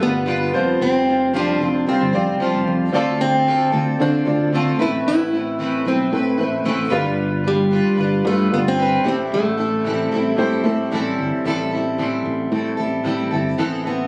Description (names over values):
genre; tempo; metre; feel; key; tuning
acoustic pop; 113 BPM; 4/4; straight; A minor; A4 = 440 Hz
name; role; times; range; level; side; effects
fingerpicked plugged-in steel-string acoustic guitar; melody; 0.0-14.1 s; G3 to E4; -22 LUFS; equal; digital delay
fingerpicked plugged-in steel-string acoustic guitar; accompaniment; 0.0-14.1 s; A2 to C5; -24 LUFS; equal; double-tracked
warm upright piano; accompaniment; 0.0-11.5 s; G3 to D5; -28 LUFS; equal; none
fretless electric bass; bass; 0.0-14.1 s; F1 to D3; -27 LUFS; equal; none
room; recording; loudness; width
light reverb; recorded on a phone in the room, studio ambience; -19 LUFS; mono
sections
0.0-11.5 A section; 11.5-13.6 B section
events
none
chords
0.0 G7; 0.5 Fsus2; 2.9 Dm7; 4.8 Amadd9; 6.9 G7; 9.1 Am7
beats
0.27 | 0.81 1.34 1.87 2.40 | 2.93 3.46 4.00 4.53 | 5.06 5.59 6.13 6.66 | 7.19 7.72 8.26 8.79 | 9.32 9.85 10.39 10.92 | 11.45 11.99 12.52 13.05 | 13.59